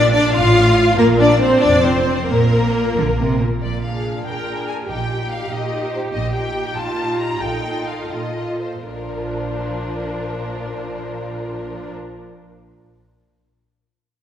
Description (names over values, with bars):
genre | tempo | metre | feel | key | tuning
quick classical-period movement for string orchestra | 78-97 BPM (dotted quarters) | 6/8 | rubato | Bb major | A4 = 441 Hz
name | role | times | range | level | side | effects
warm studio violin section | melody | 0.0-11.9 s | Bb3 to Bb5 | -26 LUFS | left 4 dB | none
warm studio violin section | second line | 0.0-11.9 s | D4 to F5 | -22 LUFS | left 2 dB | none
rich studio viola section | accompaniment | 0.0-11.9 s | F3 to Bb4 | -22 LUFS | equal | none
rich studio cello section | bass | 0.0-11.9 s | F2 to D3 | -25 LUFS | right 2 dB | none
rich studio double bass section | bass | 0.0-11.9 s | F1 to Bb1 | -23 LUFS | right 1 dB | none
room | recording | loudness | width
wet scoring stage reverb, RT60 1.9 s | heard from further back in the room | -16 LUFS | side -10 dB against mid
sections
0.0-3.6 A section; 3.6-8.9 B section; 8.9-11.7 C section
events
slowing down 5.5-8.9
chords
0.4 F/A; 1.0 Bbadd9; 1.6 F5; 2.3 N.C.; 3.6 Bb7; 4.9 Eb/Bb; 7.4 F7/Bb; 8.9 Bb